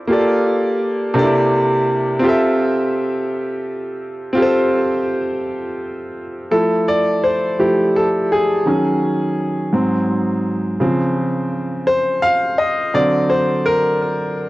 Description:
R&B; 56 BPM (dotted quarters); 6/8; straight; F major; A4 = 439 Hz
clear concert grand piano; solo; 0.0-14.5 s; Ab2 to F5; -15 LUFS; equal; cassette tape, tape echo
light reverb; home recording on cassette; -15 LUFS; side -18 dB against mid
0.0-6.5 A section; 6.5-14.5 B section
grand piano solo 6.5-14.5
0.1 Gm7; 1.2 C13; 2.2 Fmaj7; 8.7 Ebm7; 9.7 Ab7; 10.8 Dbmaj7; 12.9 Daug7

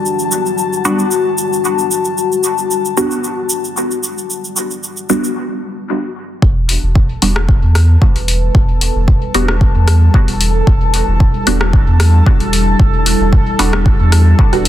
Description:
dub techno; 113 BPM; 4/4; straight; E minor; A4 = 442 Hz
deep dark ambient pad; sustained chords; 0.0-14.7 s; G3 to B4; -19 LUFS; left 3 dB; chorus, built-in reverb, sidechain pumping
bubbling stepped-filter texture; texture; 0.0-14.7 s; G3 to A5; -22 LUFS; left 3 dB; chorus, built-in reverb, sidechain pumping
cabasa; percussion; 0.1-5.3 s; -20 LUFS; right 3 dB
filtered dub chord stab; stabs; 0.8-14.7 s; G3 to F#4; -20 LUFS; right 1 dB; phaser, sidechain pumping, dub echo
warm sub bass; bass; 6.4-14.7 s; E1 to E2; -13 LUFS; equal; sidechain pumping
electronic kick drum; drums; 6.4-14.5 s; -11 LUFS; equal
punchy analog drum machine; drums; 6.7-14.7 s; hi-hat, rim click; -19 LUFS; left 2 dB; overdrive
light reverb, digital ambience; dense, heavily limited modern master; -11 LUFS; side -12 dB against mid
0.0-6.4 A section; 6.4-14.7 B section
filter sweep on synth stab 0.0-6.4; break 5.4-6.4
0.0 Em7

